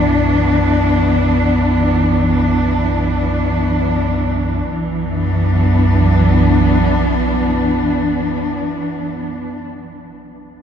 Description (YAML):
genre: dark ambient drone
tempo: free time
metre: none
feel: none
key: B minor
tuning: A4 = 440 Hz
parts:
  - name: warm studio cello section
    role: sustained chords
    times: 0.0-9.6 s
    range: E3 to D4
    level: -16 LUFS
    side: equal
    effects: none
  - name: deep rumbling drone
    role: drone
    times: 0.0-9.2 s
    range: B1 to F#2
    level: -17 LUFS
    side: equal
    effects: built-in reverb
room: wet cathedral reverb, RT60 5.9 s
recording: none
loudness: -13 LUFS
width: side -8 dB against mid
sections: 0.0-4.7 A section; 4.7-9.7 B section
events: filter sweep on synth drone 0.0-4.7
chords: 0.0 Bm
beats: free time